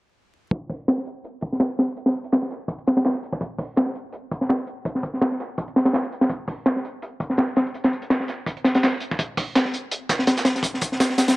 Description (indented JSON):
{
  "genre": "drum and bass, jungle",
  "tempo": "166 BPM",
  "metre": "4/4",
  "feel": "swing 54% on 16ths",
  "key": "none",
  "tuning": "none",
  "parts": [
    { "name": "crunchy breakbeat drum kit", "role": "drums", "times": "0.5-11.4 s", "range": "hi-hat, kick drum, snare drum", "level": "-21 LUFS", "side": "equal", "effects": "high-pass filter on kick, high-pass filter on hats, high-pass filter on snare, high-pass filter on room" },
    { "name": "dusty soul sampler-style drum kit", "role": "drums", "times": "0.5-11.3 s", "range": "hi-hat, snare drum, tambourine", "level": "-30 LUFS", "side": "right 2 dB", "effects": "overdrive, high-pass filter on perc, high-pass filter on hats, high-pass filter on snare" }
  ],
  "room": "small room reverb",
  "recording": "vinyl crackle, low-pass filter",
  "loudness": "-21 LUFS",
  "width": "side -21 dB against mid",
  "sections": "0.5-11.4 A section",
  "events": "filter sweep 0.5-11.4",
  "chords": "none",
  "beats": "| 0.52 0.88 1.24 1.60 | 1.97 2.33 2.69 3.05 | 3.41 3.77 4.13 4.50 | 4.86 5.22 5.58 5.94 | 6.30 6.66 7.03 7.39 | 7.75 8.11 8.47 8.83 | 9.19 9.56 9.92 10.28 | 10.64 11.00"
}